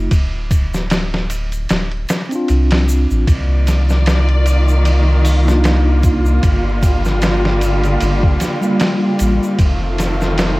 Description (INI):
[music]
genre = trip hop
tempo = 76 BPM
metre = 4/4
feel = swing 56% on 16ths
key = G minor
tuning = A4 = 444 Hz
[part]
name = tine electric piano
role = accompaniment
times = 0.0-9.6 s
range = G3 to F4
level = -20 LUFS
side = equal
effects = slow stereo tremolo, tape echo
[part]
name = soft dub sub bass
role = bass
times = 0.0-10.6 s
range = D1 to C2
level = -15 LUFS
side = equal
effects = none
[part]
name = trip hop sampler-style drum kit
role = drums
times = 0.1-10.6 s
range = hi-hat, kick drum, ride cymbal, snare drum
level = -18 LUFS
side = equal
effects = none
[part]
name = tube shaker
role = percussion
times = 0.1-10.6 s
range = none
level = -34 LUFS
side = left 1 dB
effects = none
[part]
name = warm studio string section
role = sustained chords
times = 3.3-10.6 s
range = D3 to D5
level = -20 LUFS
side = equal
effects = none
[part]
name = flickering grainy texture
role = texture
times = 4.2-10.6 s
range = F4 to F5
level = -29 LUFS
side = equal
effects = built-in reverb
[sound]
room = digital ambience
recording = vinyl crackle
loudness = -13 LUFS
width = side -20 dB against mid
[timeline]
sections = 0.0-10.6 A section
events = none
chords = 0.1 Dm7; 3.3 Cm11; 6.4 Gm7; 9.6 F7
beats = | 0.12 0.91 1.69 2.48 | 3.27 4.06 4.85 5.64 | 6.43 7.22 8.01 8.80 | 9.59 10.38